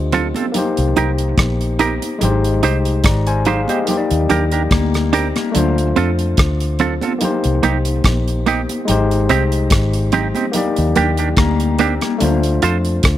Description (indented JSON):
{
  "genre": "lovers rock reggae",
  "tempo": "72 BPM",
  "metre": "4/4",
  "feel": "swing 55% on 16ths",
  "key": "C minor",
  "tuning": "A4 = 444 Hz",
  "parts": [
    { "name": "overdriven tine electric piano", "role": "accompaniment", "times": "0.0-13.2 s", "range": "Ab3 to Bb5", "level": "-20 LUFS", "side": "left 3 dB", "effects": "tube saturation" },
    { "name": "vintage muted fingered electric bass", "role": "bass", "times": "0.0-13.2 s", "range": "Ab1 to F2", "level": "-18 LUFS", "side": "equal", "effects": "none" },
    { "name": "semi-hollow electric guitar", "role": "stabs", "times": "0.1-12.8 s", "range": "Bb3 to C5", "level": "-20 LUFS", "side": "right 6 dB", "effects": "tremolo" },
    { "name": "damped 70s drum kit", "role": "drums", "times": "0.1-13.2 s", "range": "hi-hat, kick drum, rim click", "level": "-19 LUFS", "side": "equal", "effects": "none" },
    { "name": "congas", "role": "percussion", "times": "0.1-12.4 s", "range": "none", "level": "-26 LUFS", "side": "right 4 dB", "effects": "dub echo" },
    { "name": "electric guitar through a small old amp", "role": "arpeggios", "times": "4.7-5.8, 11.4-12.4 s", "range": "G3 to C4", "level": "-23 LUFS", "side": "left 10 dB", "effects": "spring reverb" }
  ],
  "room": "light reverb, small room ambience",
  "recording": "none",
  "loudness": "-14 LUFS",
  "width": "side -12 dB against mid",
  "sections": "0.0-13.2 A section",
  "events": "tine electric piano fill 10.5-12.2",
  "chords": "0.0 Dm7; 0.5 Cm7; 2.2 Abmaj7; 3.9 Ebmaj7; 5.5 Dm7; 7.2 Cm7; 8.9 Abmaj7; 10.5 Ebmaj7; 12.2 Dm7",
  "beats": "0.54 1.38 | 2.21 3.04 3.88 4.71 | 5.54 6.38 7.21 8.04 | 8.88 9.71 10.54 11.38 | 12.21 13.04"
}